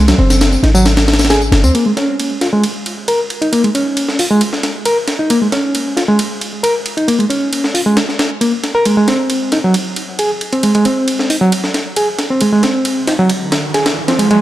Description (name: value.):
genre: breakbeat, breaks.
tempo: 135 BPM.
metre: 4/4.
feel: straight.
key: Bb minor.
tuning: A4 = 442 Hz.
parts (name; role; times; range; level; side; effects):
bright reed electric piano; riff; 0.0-14.4 s; Gb3 to Bb4; -14 LUFS; equal; fast tremolo, overdrive, low-pass filter, analog delay.
warm 808-style bass; bass; 0.0-1.7 s; Gb1 to Eb2; -12 LUFS; equal; tube saturation.
breakbeat sampler-style drum kit; drums; 0.1-14.4 s; hi-hat, ride cymbal, snare drum; -18 LUFS; equal; high-pass filter on snare, studio reverb, high-pass filter on cymbals, high-pass filter on kick, high-pass filter on hats.
tambourine; drums; 0.1-1.7 s; none; -23 LUFS; left 2 dB; overdrive, studio reverb.
riser; sound effects; 13.1-14.4 s; none; -22 LUFS; right 3 dB; none.
room: moderate lush hall reverb, RT60 1.8 s.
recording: dry, gritty hardware recording.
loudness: -12 LUFS.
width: side -14 dB against mid.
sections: 0.0-1.7 A section; 1.7-14.4 B section.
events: filter sweep on reed electric piano 1.7-14.4; riser 13.1-14.4.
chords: 0.0 Ab7; 1.7 Bbm7; 8.9 Ab.